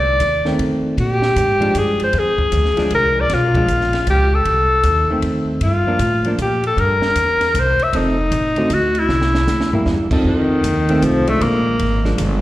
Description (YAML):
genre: jazz, small-group swing and bop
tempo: 155 BPM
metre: 3/4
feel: swing 64% on 8ths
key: F mixolydian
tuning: A4 = 440 Hz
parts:
  - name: clear alto saxophone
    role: melody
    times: 0.0-12.2 s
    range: Eb3 to E5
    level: -17 LUFS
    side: left 1 dB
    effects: slapback echo
  - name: upright bass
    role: bass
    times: 0.0-12.4 s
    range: F1 to Bb2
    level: -20 LUFS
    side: equal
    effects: none
  - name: compact cocktail drum kit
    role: drums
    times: 0.2-12.3 s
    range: crash cymbal, hi-hat, kick drum, ride cymbal, snare drum, toms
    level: -26 LUFS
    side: equal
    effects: none
  - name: hollow-body jazz guitar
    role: accompaniment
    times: 0.5-12.4 s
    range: D3 to A4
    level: -20 LUFS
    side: right 1 dB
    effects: slapback echo
room: light reverb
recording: live gig heard through the venue's PA, recital hall reverb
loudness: -14 LUFS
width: side -15 dB against mid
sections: 0.0-10.3 A section; 10.3-12.4 A section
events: drum fill 9.1-9.9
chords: 0.0 Cm; 0.6 F7; 1.0 Bb7; 3.3 Bdim7; 4.5 F7; 5.6 Gm7; 6.8 C7; 7.9 F7; 8.7 D; 9.1 C7; 10.3 F7; 11.4 Bb7